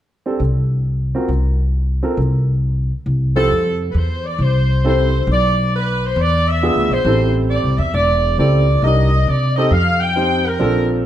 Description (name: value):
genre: jazz, big band swing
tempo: 135 BPM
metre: 4/4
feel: swing 65% on 8ths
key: F major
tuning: A4 = 440 Hz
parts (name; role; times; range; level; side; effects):
- warm concert grand piano; accompaniment; 0.3-11.1 s; F3 to C5; -20 LUFS; right 2 dB; none
- upright bass; bass; 0.4-11.1 s; E1 to C3; -16 LUFS; equal; none
- clear saxophone section; melody; 3.4-10.9 s; A4 to G5; -18 LUFS; equal; none
room: moderate large studio reverb, RT60 1.4 s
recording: dark, warm production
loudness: -14 LUFS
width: side -11 dB against mid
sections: 0.0-3.5 A section; 3.5-11.1 B section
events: none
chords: 0.0 Csus2; 0.8 Gbmaj7#11/C; 1.7 Fadd11/C; 2.6 C; 3.5 Fmaj9; 5.3 Bm; 6.2 E7b9; 7.1 Am7; 8.8 Cm9; 9.7 Fsus2